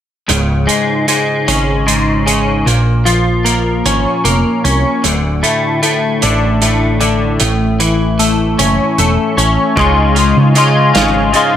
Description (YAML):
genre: quiet-loud alternative rock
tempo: 51 BPM (dotted quarters)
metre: 6/8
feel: straight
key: unclear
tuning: A4 = 440 Hz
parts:
  - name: twelve-string electric guitar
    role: arpeggios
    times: 0.3-11.6 s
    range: Db2 to F4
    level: -12 LUFS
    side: left 2 dB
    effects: analog chorus
  - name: hollow-body short-scale fingered electric bass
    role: bass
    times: 0.3-11.3 s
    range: Db1 to Db3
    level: -15 LUFS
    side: right 1 dB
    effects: none
  - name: loose indie drum kit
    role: drums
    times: 0.3-11.5 s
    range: hi-hat, kick drum, snare drum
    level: -18 LUFS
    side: right 3 dB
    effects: none
room: studio reverb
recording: none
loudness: -10 LUFS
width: side -10 dB against mid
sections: 0.3-9.8 A section; 9.8-11.6 B section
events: none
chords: 0.3 Db5; 2.7 Bbm; 5.0 D5; 7.4 A; 9.8 Db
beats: | 0.29 1.48 | 2.67 3.85 | 5.04 6.22 | 7.41 8.59 | 9.77 10.95